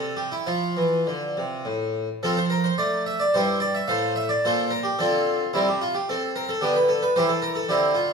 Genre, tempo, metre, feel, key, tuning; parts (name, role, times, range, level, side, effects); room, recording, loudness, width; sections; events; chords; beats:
classical, baroque-style suite movement for harpsichord; 100-114 BPM; 3/4; rubato; F major; A4 = 440 Hz
harpsichord; solo; 0.0-8.1 s; G2 to F5; -21 LUFS; equal
moderate recital hall reverb, RT60 1.6 s; studio ambience; -21 LUFS; side -5 dB against mid
0.0-2.2 A section; 2.2-8.1 B section
0.5 F; 3.3 C/G; 3.9 F/A; 5.5 C5; 6.6 Gadd9/D; 7.1 C
| 0.48 1.07 1.66 | 2.23 2.79 3.33 | 3.88 4.43 4.97 | 5.52 6.06 6.60 | 7.15 7.68